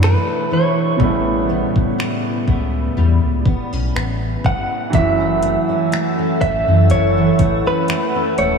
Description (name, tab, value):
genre	contemporary R&B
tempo	61 BPM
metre	4/4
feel	swing 54% on 16ths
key	unclear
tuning	A4 = 441 Hz
part	direct-recorded clean electric guitar	melody	0.0-8.6 s	B4 to F#5	-20 LUFS	equal	analog delay
part	clear concert grand piano	accompaniment	0.0-8.6 s	B2 to E4	-23 LUFS	right 3 dB	none
part	picked steel-string acoustic guitar	arpeggios	0.0-8.6 s	F#2 to D4	-21 LUFS	equal	ensemble chorus, analog delay
part	sub bass with octave	bass	0.0-8.6 s	Eb1 to F#2	-18 LUFS	equal	none
part	smooth R&B drum kit	drums	0.0-8.6 s	finger snaps, hi-hat, kick drum	-21 LUFS	equal	none
part	glassy FM pad	sustained chords	5.6-8.6 s	A4 to E6	-23 LUFS	left 3 dB	ensemble chorus, built-in reverb
room	wet cathedral reverb, RT60 5.5 s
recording	dreamy mix soaked in reverb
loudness	-15 LUFS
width	side -5 dB against mid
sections	0.0-4.9 A section; 4.9-8.6 B section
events	none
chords	0.0 Bm11; 1.0 A9; 4.9 F#m7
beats	0.02 | 1.00 1.98 2.97 3.95 | 4.93 5.92 6.90 7.89